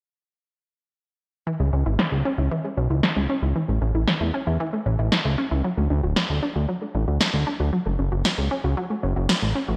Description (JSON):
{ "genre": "italo disco", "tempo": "115 BPM", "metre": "4/4", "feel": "straight", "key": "unclear", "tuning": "A4 = 440 Hz", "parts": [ { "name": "analog pluck", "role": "arpeggios", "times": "1.5-9.7 s", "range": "E3 to F#4", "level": "-30 LUFS", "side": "equal", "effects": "chorus, delay" }, { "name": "fat analog bass", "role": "bass", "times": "1.6-9.8 s", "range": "D1 to E2", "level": "-25 LUFS", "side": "equal", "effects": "none" }, { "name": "electronic snare drum", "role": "drums", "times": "2.0-9.4 s", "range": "none", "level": "-26 LUFS", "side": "equal", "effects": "low-pass filter on snare, small room ambience, gated reverb" } ], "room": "light reverb", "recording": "bright 1980s-style digital production", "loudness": "-23 LUFS", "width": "mono", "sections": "1.5-9.8 A section", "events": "filter sweep on drum 1.5-9.8; filter sweep on analog synth bass 1.5-9.8", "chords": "1.5 C#m; 3.6 A; 5.6 D; 7.7 F#m" }